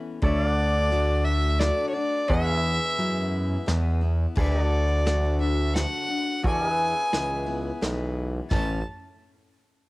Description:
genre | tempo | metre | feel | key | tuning
honky-tonk and classic country | 87 BPM | 3/4 | straight | unclear | A4 = 440 Hz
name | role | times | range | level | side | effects
picked steel-string acoustic guitar | accompaniment | 0.0-8.8 s | E2 to F#4 | -33 LUFS | left 5 dB | cassette tape
pedal steel guitar | sustained chords | 0.0-8.5 s | F#4 to F#5 | -34 LUFS | equal | cassette tape
clear fiddle | melody | 0.2-8.8 s | C#5 to A5 | -27 LUFS | equal | none
smooth synth bass | bass | 0.2-8.8 s | A1 to F#2 | -25 LUFS | equal | none
vintage brush drum kit | drums | 0.2-8.7 s | china cymbal, crash cymbal, hi-hat, kick drum, snare drum, toms | -28 LUFS | equal | cassette tape
room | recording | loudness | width
small room ambience | home recording on cassette | -22 LUFS | side -20 dB against mid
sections
0.0-4.4 A section; 4.4-8.5 B section; 8.5-9.9 C section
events
none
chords
0.2 D; 2.3 E; 4.4 D; 6.4 E; 8.5 A

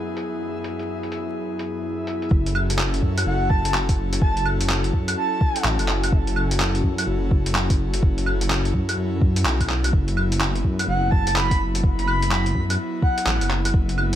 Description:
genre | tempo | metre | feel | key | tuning
future garage | 126 BPM | 4/4 | swing 63% on 16ths | F# minor | A4 = 440 Hz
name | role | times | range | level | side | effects
airy breathy pad | sustained chords | 0.0-14.2 s | F#2 to A4 | -27 LUFS | left 2 dB | chorus, sidechain pumping
backwards swelling texture | texture | 0.0-2.3 s | E4 to E5 | -35 LUFS | equal | built-in reverb
lo-fi sampler-style drum kit | drums | 0.2-14.2 s | claves, handclaps, hi-hat | -25 LUFS | equal | overdrive, low-pass filter on hats, low-pass filter on perc, low-pass filter on snare, low-pass filter on room
dark detuned saw bass | bass | 2.3-14.2 s | F#1 to F#2 | -23 LUFS | equal | sidechain pumping
electronic kick drum | drums | 2.3-13.9 s | none | -20 LUFS | equal | none
breathy flute-like synth lead | melody | 3.3-5.6, 10.9-13.5 s | F#5 to B5 | -27 LUFS | right 1 dB | tremolo, wide subtle chorus, cassette tape, ping-pong delay
room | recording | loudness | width
moderate recital hall reverb, RT60 1.4 s | vinyl crackle | -19 LUFS | side -11 dB against mid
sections
0.0-2.3 A section; 2.3-14.2 B section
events
none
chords
0.0 Bsus4/F#; 2.3 F#m7; 9.9 Bsus4/F#

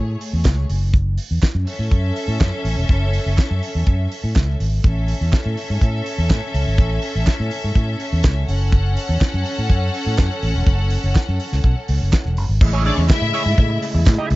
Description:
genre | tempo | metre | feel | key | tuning
disco | 124 BPM | 4/4 | straight | F# minor | A4 = 440 Hz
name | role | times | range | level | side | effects
clear studio string section | second line | 0.0-13.8 s | A3 to F#5 | -26 LUFS | left 1 dB | none
fingered electric bass | bass | 0.0-14.4 s | E1 to A2 | -19 LUFS | equal | none
damped 70s drum kit | drums | 0.2-14.4 s | crash cymbal, hi-hat, kick drum, snare drum | -18 LUFS | equal | none
group handclap | percussion | 0.5-14.2 s | none | -33 LUFS | right 8 dB | none
clean electric guitar | accompaniment | 12.6-14.3 s | E4 to E5 | -26 LUFS | right 6 dB | wah
bright tonewheel organ | sustained chords | 12.6-14.4 s | C#3 to E4 | -25 LUFS | left 1 dB | overdrive, fast rotary speaker
room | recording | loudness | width
small room ambience | nothing above 7.7 kHz | -16 LUFS | side -19 dB against mid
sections
0.0-12.6 A section; 12.6-14.4 B section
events
none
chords
0.0 Amaj7; 0.7 F#m7; 4.8 A; 8.5 F#m; 12.6 Amaj7

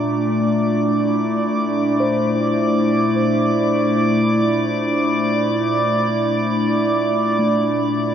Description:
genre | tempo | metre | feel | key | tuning
ambient | free time | none | none | Bb lydian | A4 = 440 Hz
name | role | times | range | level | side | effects
warbly tape-like pad | sustained chords | 0.0-8.1 s | Bb2 to F4 | -18 LUFS | left 1 dB | chorus, built-in reverb
mellow tine electric piano | arpeggios | 0.0-8.1 s | A3 to C5 | -26 LUFS | equal | medium stereo tremolo, tape echo
drifting glass-harmonics texture | texture | 0.0-8.1 s | D5 to D6 | -22 LUFS | right 2 dB | chorus, built-in reverb
room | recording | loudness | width
wet huge ambient reverb, RT60 8.8 s | cassette tape | -16 LUFS | side -8 dB against mid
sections
0.0-8.1 A section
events
fade-out on tine electric piano 0.0-8.1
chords
0.0 Bbmaj7

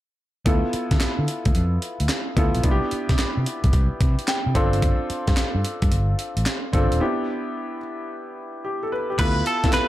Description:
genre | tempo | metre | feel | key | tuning
R&B, new jack swing | 110 BPM | 4/4 | swing 65% on 16ths | D dorian | A4 = 440 Hz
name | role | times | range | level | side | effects
warm concert grand piano | accompaniment | 0.5-9.9 s | B3 to C6 | -26 LUFS | left 1 dB | none
fingered electric bass | bass | 0.5-9.8 s | Eb1 to D3 | -23 LUFS | equal | none
breakbeat sampler-style drum kit | drums | 0.5-9.9 s | crash cymbal, handclaps, hi-hat, kick drum, snare drum | -22 LUFS | equal | none
direct-recorded clean electric guitar | melody | 9.2-9.9 s | A4 to B4 | -22 LUFS | right 1 dB | none
room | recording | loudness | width
little or no reverb | none | -20 LUFS | side -14 dB against mid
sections
0.5-9.2 A section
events
grand piano fill 4.0-4.8; break 7.0-9.2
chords
0.5 Dm69; 2.6 Cmaj7; 4.6 G7sus4; 7.0 Em7; 9.2 Dm69

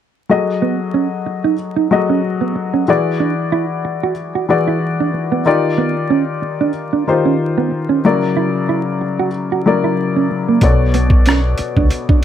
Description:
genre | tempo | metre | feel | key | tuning
R&B, neo-soul | 93 BPM | 4/4 | swing 56% on 16ths | unclear | A4 = 440 Hz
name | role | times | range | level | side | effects
dark upright piano | accompaniment | 0.3-12.2 s | B2 to D#5 | -16 LUFS | left 4 dB | none
mellow electric guitar | second line | 0.6-12.2 s | A#3 to F#4 | -17 LUFS | right 7 dB | none
deep dub fingered electric bass | bass | 10.6-12.1 s | B1 to C#2 | -16 LUFS | equal | none
boom bap sampler-style drum kit | drums | 10.6-12.2 s | hi-hat, kick drum, rim click | -13 LUFS | equal | none
room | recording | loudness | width
moderate studio reverb, RT60 0.6 s | vinyl crackle | -14 LUFS | side -10 dB against mid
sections
0.3-12.2 A section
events
none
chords
0.3 F#m69; 2.9 E9; 5.5 D#maj9; 8.0 F#7b13; 10.6 Bm9

